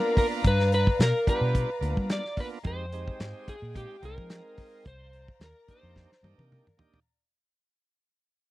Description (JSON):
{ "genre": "straight-eighth soul blues", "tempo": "109 BPM", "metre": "4/4", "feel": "swing 54% on 16ths", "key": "C minor", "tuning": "A4 = 440 Hz", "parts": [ { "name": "electric slide guitar", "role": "melody", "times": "0.0-6.8 s", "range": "G4 to D5", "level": "-30 LUFS", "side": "equal", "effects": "none" }, { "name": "bright tonewheel organ", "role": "accompaniment", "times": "0.0-7.0 s", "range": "G3 to Bb4", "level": "-37 LUFS", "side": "right 5 dB", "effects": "slow rotary speaker, overdrive" }, { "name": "rich studio string section", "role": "sustained chords", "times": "0.0-7.0 s", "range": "Ab3 to A#5", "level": "-38 LUFS", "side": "left 5 dB", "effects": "none" }, { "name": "warm soul drum kit", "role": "drums", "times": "0.2-7.1 s", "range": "hi-hat, kick drum, snare drum, toms", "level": "-27 LUFS", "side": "equal", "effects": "none" }, { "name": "vintage muted fingered electric bass", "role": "bass", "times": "0.4-6.6 s", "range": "C2 to G3", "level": "-28 LUFS", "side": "equal", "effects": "none" } ], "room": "little or no reverb", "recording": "dry, close 1970s-style studio recording", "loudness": "-24 LUFS", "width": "side -17 dB against mid", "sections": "0.0-7.1 A section", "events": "fade-out 0.0-7.1; drum fill 6.0-7.1", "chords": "0.0 G7#9; 2.7 Fm9; 4.9 Cm9" }